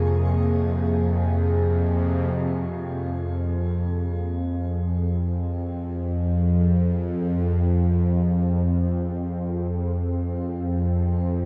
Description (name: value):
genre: dark ambient drone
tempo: free time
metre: none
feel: none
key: F minor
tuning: A4 = 441 Hz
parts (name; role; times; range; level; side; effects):
- sweeping resonant pad; sustained chords; 0.0-11.5 s; F2 to Ab4; -32 LUFS; equal; chorus, shimmer reverb
- bowed-like drone; drone; 0.0-11.5 s; F2 to C3; -24 LUFS; equal; built-in reverb, phaser
- flickering grainy texture; texture; 0.0-2.4 s; Db6; -57 LUFS; equal; built-in reverb, shimmer reverb
room: wet cathedral reverb, RT60 6.4 s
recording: none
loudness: -24 LUFS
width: mono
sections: 0.0-2.4 A section; 2.4-11.5 B section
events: fade-in on analog synth pad 2.4-11.5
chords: 0.0 Bbm7/F